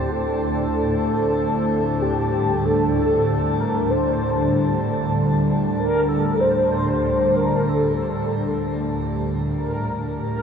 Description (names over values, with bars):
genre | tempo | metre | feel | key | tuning
dark ambient drone | 48 BPM | 4/4 | straight | unclear | A4 = 440 Hz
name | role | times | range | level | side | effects
mellow horn-like synth lead | melody | 0.0-10.4 s | G4 to C5 | -23 LUFS | equal | ensemble chorus, shimmer reverb, tape echo
deep dark ambient pad | sustained chords | 0.0-10.4 s | D3 to A5 | -22 LUFS | equal | chorus, built-in reverb, shimmer reverb
swarming drone | drone | 0.0-10.4 s | D2 to A2 | -25 LUFS | left 1 dB | built-in reverb
room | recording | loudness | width
wet huge ambient reverb, RT60 8.3 s | in a vast, echoing space | -18 LUFS | side -7 dB against mid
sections
0.0-10.4 A section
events
fade-out 6.8-10.4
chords
0.1 G5/D